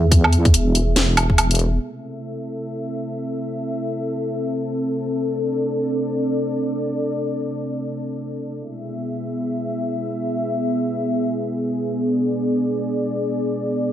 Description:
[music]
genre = deep dubstep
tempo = free time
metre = none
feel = none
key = A harmonic minor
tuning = A4 = 443 Hz
[part]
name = dark analog pad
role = sustained chords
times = 0.0-13.9 s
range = B3 to E5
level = -22 LUFS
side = equal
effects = chorus
[part]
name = deep soft wobble bass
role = bass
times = 0.0-1.8 s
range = E1 to E2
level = -18 LUFS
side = equal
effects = chorus
[part]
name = electronic kick drum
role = drums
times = 0.1-1.4 s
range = none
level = -15 LUFS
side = equal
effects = none
[part]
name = garage drum kit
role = drums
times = 0.1-1.7 s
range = hi-hat, snare drum, woodblock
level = -19 LUFS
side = right 1 dB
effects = low-pass filter on hats, low-pass filter on perc, low-pass filter on snare
[sound]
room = light reverb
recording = none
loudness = -20 LUFS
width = side -11 dB against mid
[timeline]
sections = 0.0-1.8 A section; 1.8-13.9 B section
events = none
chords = 0.0 E; 1.8 Am; 8.6 E

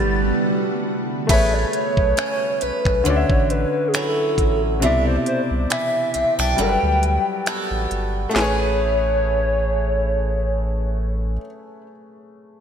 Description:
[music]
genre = contemporary R&B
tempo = 68 BPM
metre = 4/4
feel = swing 54% on 16ths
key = A major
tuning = A4 = 440 Hz
[part]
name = hollow clarinet-like synth lead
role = melody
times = 0.0-11.4 s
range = G#4 to A6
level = -22 LUFS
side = equal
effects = chorus, ping-pong delay
[part]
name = clear grand piano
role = accompaniment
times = 0.0-12.6 s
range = B2 to E5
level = -26 LUFS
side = left 3 dB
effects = none
[part]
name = ethereal airy pad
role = sustained chords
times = 0.0-1.3 s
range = D3 to F#4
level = -26 LUFS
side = right 2 dB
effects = ensemble chorus, built-in reverb, sidechain pumping
[part]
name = picked swing-style acoustic guitar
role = arpeggios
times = 0.0-11.9 s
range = C3 to B4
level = -28 LUFS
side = right 3 dB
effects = wide subtle chorus, ping-pong delay
[part]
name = warm sub bass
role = bass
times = 0.0-11.4 s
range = G1 to D2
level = -23 LUFS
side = equal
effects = none
[part]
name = trap drum kit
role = drums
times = 1.3-8.6 s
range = crash cymbal, finger snaps, hi-hat, kick drum, snare drum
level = -24 LUFS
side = equal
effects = none
[sound]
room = moderate lush hall reverb, RT60 2.6 s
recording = bright 1980s-style digital production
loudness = -18 LUFS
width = side -8 dB against mid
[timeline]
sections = 0.0-1.3 A section; 1.3-8.3 B section; 8.3-11.9 C section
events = break 0.4-1.3; kick muted 4.8-8.3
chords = 0.0 Gmaj9; 1.3 Amaj9; 3.1 Dmaj9; 4.8 Cmaj9; 6.6 Gmaj9; 8.3 Amaj9

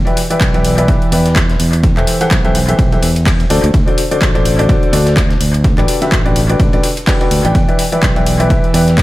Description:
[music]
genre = piano house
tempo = 126 BPM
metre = 4/4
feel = swing 57% on 16ths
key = E minor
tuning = A4 = 440 Hz
[part]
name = overdriven fingered electric bass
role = bass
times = 0.0-9.0 s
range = E1 to E2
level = -15 LUFS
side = equal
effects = sidechain pumping
[part]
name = clear baby grand piano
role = riff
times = 0.1-9.0 s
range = D3 to G5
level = -16 LUFS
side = left 1 dB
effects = sidechain pumping, analog delay
[part]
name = house drum kit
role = drums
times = 0.1-9.0 s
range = handclaps, hi-hat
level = -20 LUFS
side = left 1 dB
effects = studio reverb, analog delay
[part]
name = dusty soul sampler-style drum kit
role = drums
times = 0.2-9.0 s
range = hi-hat, ride cymbal, snare drum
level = -29 LUFS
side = right 1 dB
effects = sidechain pumping on cymbals, high-pass filter on cymbals, studio reverb, high-pass filter on snare, sidechain pumping on hats, high-pass filter on hats, high-pass filter on room, analog delay
[part]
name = electronic kick drum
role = drums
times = 0.4-9.0 s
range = none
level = -14 LUFS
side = equal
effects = overdrive, studio reverb
[sound]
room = light reverb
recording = echo-heavy mix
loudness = -10 LUFS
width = side -17 dB against mid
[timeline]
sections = 0.0-9.0 A section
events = none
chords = 0.0 Em7; 1.8 Am7/E; 3.5 D7; 5.4 Gmaj7; 7.5 Em7

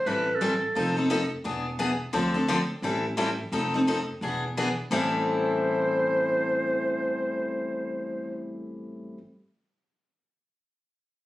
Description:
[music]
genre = acoustic string swing (jazz manouche)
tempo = 174 BPM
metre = 4/4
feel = swing 62% on 8ths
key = A minor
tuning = A4 = 442 Hz
[part]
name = growling clarinet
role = second line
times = 0.0-1.0, 4.9-8.4 s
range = A4 to C5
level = -27 LUFS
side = equal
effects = none
[part]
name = picked steel-string acoustic guitar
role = accompaniment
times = 0.1-9.2 s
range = A2 to A4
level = -27 LUFS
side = left 1 dB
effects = none
[part]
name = upright bass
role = bass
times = 0.1-9.1 s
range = E1 to D2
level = -35 LUFS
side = right 1 dB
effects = none
[sound]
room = moderate studio reverb, RT60 0.6 s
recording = recorded on a phone in the room, studio reverb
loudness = -24 LUFS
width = side -16 dB against mid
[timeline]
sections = 0.0-4.9 A section; 4.9-7.7 B section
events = none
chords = 0.1 Am7; 0.8 F7; 1.4 E7; 2.1 Dm7; 2.8 Am7; 3.5 F7; 4.2 E7; 4.9 Am7

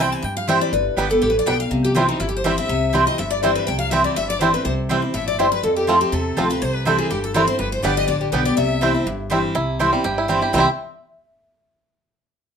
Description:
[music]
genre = bluegrass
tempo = 245 BPM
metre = 4/4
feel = straight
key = C major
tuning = A4 = 440 Hz
[part]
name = bluegrass banjo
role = melody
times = 0.0-10.7 s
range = G3 to G4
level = -23 LUFS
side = right 3 dB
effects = none
[part]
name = picked steel-string acoustic guitar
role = melody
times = 0.0-10.7 s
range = Eb4 to Ab5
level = -23 LUFS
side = left 2 dB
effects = none
[part]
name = picked steel-string acoustic guitar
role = accompaniment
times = 0.0-10.6 s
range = F2 to G4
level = -23 LUFS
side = left 1 dB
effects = none
[part]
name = mandolin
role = stabs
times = 0.0-10.6 s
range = B3 to A5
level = -21 LUFS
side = right 2 dB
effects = none
[part]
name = upright bass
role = bass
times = 0.0-10.7 s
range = G1 to G2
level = -27 LUFS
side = right 1 dB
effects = none
[part]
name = clear fiddle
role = second line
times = 1.2-10.7 s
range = Eb4 to G5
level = -28 LUFS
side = left 3 dB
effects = none
[sound]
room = moderate studio reverb, RT60 0.7 s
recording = minimal, uncompressed stereo recording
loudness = -17 LUFS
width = side -7 dB against mid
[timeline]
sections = 0.0-9.6 A section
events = none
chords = 0.0 C; 0.7 G; 1.7 C; 5.6 F; 6.6 C; 7.6 G; 8.6 C

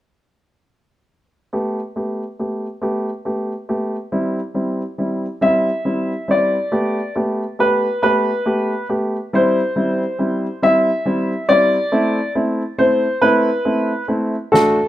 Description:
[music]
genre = six-eight pop ballad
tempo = 46 BPM (dotted quarters)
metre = 6/8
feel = straight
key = G major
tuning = A4 = 436 Hz
[part]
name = warm baby grand piano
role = accompaniment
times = 1.5-14.8 s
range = G3 to G4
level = -19 LUFS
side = equal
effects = none
[part]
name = clear concert grand piano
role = melody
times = 5.4-14.9 s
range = A4 to E5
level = -17 LUFS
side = equal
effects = plate reverb
[part]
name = snare drum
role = drums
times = 14.5-14.7 s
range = none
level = -24 LUFS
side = equal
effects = none
[sound]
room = wet studio reverb, RT60 0.5 s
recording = rough home demo mix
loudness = -16 LUFS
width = side -13 dB against mid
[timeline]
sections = 1.5-6.7 A section; 6.7-14.9 B section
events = drum fill 14.5-14.9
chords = 1.5 Gadd9; 4.1 C; 6.7 Gadd9; 9.3 C; 11.9 Am

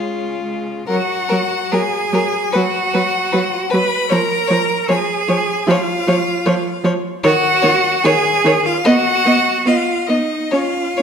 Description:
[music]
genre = classical, slow romantic movement for string quartet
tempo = 75 BPM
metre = 4/4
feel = uneven beats, rubato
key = unclear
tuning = A4 = 440 Hz
[part]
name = clear violin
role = melody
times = 0.0-11.0 s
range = C#5 to B5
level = -22 LUFS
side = left 9 dB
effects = none
[part]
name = rich violin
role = second line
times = 0.0-11.0 s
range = E#4 to D#5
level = -22 LUFS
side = left 3 dB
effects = none
[part]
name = dark viola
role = accompaniment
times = 0.0-11.0 s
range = D#3 to C#4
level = -19 LUFS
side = right 2 dB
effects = none
[part]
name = bright cello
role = bass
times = 0.0-11.0 s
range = C#3 to B4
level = -19 LUFS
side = right 4 dB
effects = none
[sound]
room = moderate scoring stage reverb, RT60 1.6 s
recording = none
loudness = -14 LUFS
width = side -7 dB against mid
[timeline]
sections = 0.9-11.0 A section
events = none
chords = 0.0 C#; 0.9 N.C.; 2.5 F#sus4; 4.1 C#/E# (rootless); 7.2 D#m; 8.8 B

